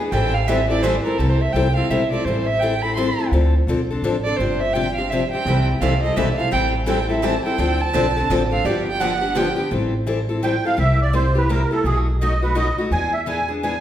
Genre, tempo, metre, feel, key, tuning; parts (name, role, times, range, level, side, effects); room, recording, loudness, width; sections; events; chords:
acoustic string swing (jazz manouche); 169 BPM; 3/4; swing 62% on 8ths; C major; A4 = 440 Hz
picked steel-string acoustic guitar; accompaniment; 0.0-13.7 s; B2 to A4; -22 LUFS; left 3 dB
rich violin; second line; 0.1-9.7 s; A4 to C6; -23 LUFS; right 3 dB
picked steel-string acoustic guitar; accompaniment; 0.1-0.9, 5.5-9.5 s; C3 to A4; -27 LUFS; right 4 dB
upright bass; bass; 0.1-13.8 s; G1 to E2; -22 LUFS; equal
musette accordion; melody; 10.4-13.8 s; G#4 to G#5; -22 LUFS; right 2 dB
wet recital hall reverb, RT60 1.3 s; recorded in a church or concert hall; -17 LUFS; side -11 dB against mid
0.0-1.2 A section; 1.2-9.7 A section; 9.7-13.8 A section
violin solo 0.0-9.7; accordion solo 9.7-13.8
0.1 Am7; 1.2 C6; 2.3 Am7; 3.3 Dm7; 4.4 G7sus4; 5.5 C6; 6.5 Am7; 7.6 Dm7; 8.6 G7; 9.7 Am7; 10.8 C7; 11.8 B7; 12.9 E7